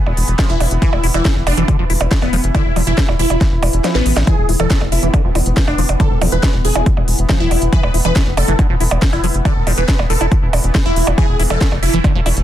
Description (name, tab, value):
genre	psychedelic trance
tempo	139 BPM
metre	4/4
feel	straight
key	unclear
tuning	A4 = 444 Hz
part	bubbling stepped-filter texture	sustained chords	0.0-12.4 s	E3 to E4	-26 LUFS	left 1 dB	chorus, built-in reverb, sidechain pumping
part	tight sequencer bass	bass	0.1-12.4 s	E1 to A1	-17 LUFS	equal	none
part	techno drum kit	drums	0.1-12.4 s	hi-hat, percussion blips, snare drum	-21 LUFS	right 3 dB	overdrive
part	liquid acid bass	riff	0.4-12.3 s	D3 to E4	-23 LUFS	equal	phaser, auto-pan, sidechain pumping, tape echo
part	electronic kick drum	drums	0.4-12.1 s	none	-16 LUFS	equal	overdrive
part	supersaw stab	melody	0.5-12.0 s	B3 to B4	-22 LUFS	left 1 dB	phaser, cassette tape, sidechain pumping, dub echo
room	little or no reverb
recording	dense, heavily limited modern master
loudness	-12 LUFS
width	side -12 dB against mid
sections	0.0-12.4 A section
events	kick drops out 3.8-4.3; drum fill 3.8-4.3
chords	0.0 E5